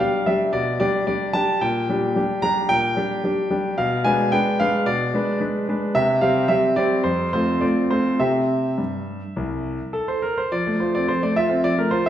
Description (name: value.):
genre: classical-period piano sonatina.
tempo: 102-112 BPM.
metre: 4/4.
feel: rubato.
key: unclear.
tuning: A4 = 439 Hz.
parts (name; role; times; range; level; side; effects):
clear concert grand piano; solo; 0.0-12.1 s; C2 to Bb5; -19 LUFS; equal; none.
room: wet recital hall reverb, RT60 1.4 s.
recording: heard from further back in the room.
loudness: -19 LUFS.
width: side -10 dB against mid.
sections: 0.0-10.5 A section; 10.5-12.1 B section.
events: none.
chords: 0.0 G; 1.6 Gm/Bb; 3.8 Bdim7; 6.0 C5; 7.1 F; 8.2 C; 10.5 F.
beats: 0.53 1.07 | 1.61 2.15 2.69 3.23 | 3.77 4.32 4.87 5.41 | 5.96 6.50 7.06 7.63 | 8.21 8.79 9.37 9.95 | 10.53 11.09 11.65.